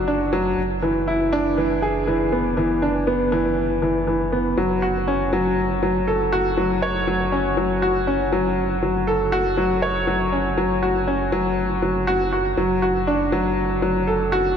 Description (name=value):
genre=piano and strings electronica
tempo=120 BPM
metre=4/4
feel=straight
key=F# minor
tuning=A4 = 440 Hz
part: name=clear upright piano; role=riff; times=0.0-14.6 s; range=E3 to D5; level=-19 LUFS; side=equal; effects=digital delay
part: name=round analog bass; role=bass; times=0.0-14.6 s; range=F#1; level=-29 LUFS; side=right 1 dB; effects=tube saturation
room=moderate huge ambient reverb, RT60 4.1 s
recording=nothing above 10.7 kHz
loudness=-18 LUFS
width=side -7 dB against mid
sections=0.0-14.6 A section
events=none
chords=0.0 D/F#; 0.6 E7/F#; 4.6 F#m; 12.6 D/F#